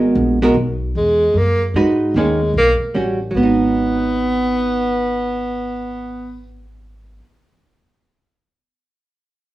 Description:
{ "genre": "jazz, small-group swing and bop", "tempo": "151 BPM", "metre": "3/4", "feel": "swing 67% on 8ths", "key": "G# minor", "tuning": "A4 = 440 Hz", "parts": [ { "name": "archtop guitar, miked and amplified", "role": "accompaniment", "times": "0.0-7.3 s", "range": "D#3 to B4", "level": "-16 LUFS", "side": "right 2 dB", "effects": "none" }, { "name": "upright bass", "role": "bass", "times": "0.0-7.2 s", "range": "G#1 to G#2", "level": "-23 LUFS", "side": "equal", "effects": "none" }, { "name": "bright tenor saxophone", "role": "melody", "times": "1.0-6.5 s", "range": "G#3 to B3", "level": "-18 LUFS", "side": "equal", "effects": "plate reverb" } ], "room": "wet studio reverb, RT60 0.8 s", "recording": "worn, warbling old tape, cassette tape, warbly pitch drift, small room ambience", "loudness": "-15 LUFS", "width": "side -16 dB against mid", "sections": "1.0-3.3 A section; 3.3-5.7 B section", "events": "none", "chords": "0.0 G#m9; 1.0 Eadd9; 1.8 G#m7; 2.1 D#7sus4; 2.9 A6; 3.3 G#m7" }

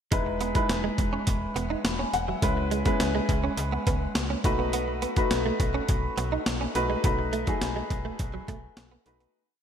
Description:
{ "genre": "1980s-style pop", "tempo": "104 BPM", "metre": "4/4", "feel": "straight", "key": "unclear", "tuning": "A4 = 440 Hz", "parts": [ { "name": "warm baby grand piano", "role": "accompaniment", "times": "0.1-9.4 s", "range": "G#3 to B5", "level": "-29 LUFS", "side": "left 1 dB", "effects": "wide subtle chorus" }, { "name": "direct-recorded clean electric guitar", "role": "riff", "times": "0.1-9.3 s", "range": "F#3 to D#4", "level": "-33 LUFS", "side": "right 6 dB", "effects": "ensemble chorus, ping-pong delay" }, { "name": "slap-like FM bass", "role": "bass", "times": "0.1-9.3 s", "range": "E1 to C#2", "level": "-32 LUFS", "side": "equal", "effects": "none" }, { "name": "breakbeat sampler-style drum kit", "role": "drums", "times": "0.1-9.3 s", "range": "hi-hat, kick drum, snare drum", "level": "-28 LUFS", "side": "equal", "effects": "gated reverb" } ], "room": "moderate plate reverb, RT60 2.5 s", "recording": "bright 1980s-style digital production", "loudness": "-24 LUFS", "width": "side -8 dB against mid", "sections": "0.1-9.3 verse", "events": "fade-out 7.0-9.3", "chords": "0.1 Emaj7; 2.4 C#m7; 4.4 B7" }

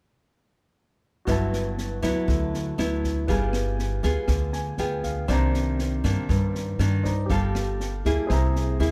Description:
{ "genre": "bossa nova", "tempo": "120 BPM", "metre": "4/4", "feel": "straight", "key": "unclear", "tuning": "A4 = 438 Hz", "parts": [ { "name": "nylon-string guitar", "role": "accompaniment", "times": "1.3-8.9 s", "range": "G2 to A4", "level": "-30 LUFS", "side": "equal", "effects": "none" }, { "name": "warm grand piano", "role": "accompaniment", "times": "1.3-8.9 s", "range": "Eb4 to Bb5", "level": "-36 LUFS", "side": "equal", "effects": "none" }, { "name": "upright bass", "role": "bass", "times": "1.3-8.9 s", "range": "G1 to G2", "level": "-28 LUFS", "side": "equal", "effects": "none" }, { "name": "open jazz drum kit", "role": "drums", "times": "1.3-8.9 s", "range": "kick drum, rim click, snare drum", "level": "-33 LUFS", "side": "equal", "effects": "none" } ], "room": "little or no reverb", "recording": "close, detailed microphones", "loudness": "-25 LUFS", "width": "mono", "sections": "1.3-8.9 A section", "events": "grand piano fill 4.3-5.3", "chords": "1.3 Gmaj13; 3.3 G7b9; 5.3 Cm9; 7.3 Gm9; 8.3 C7alt" }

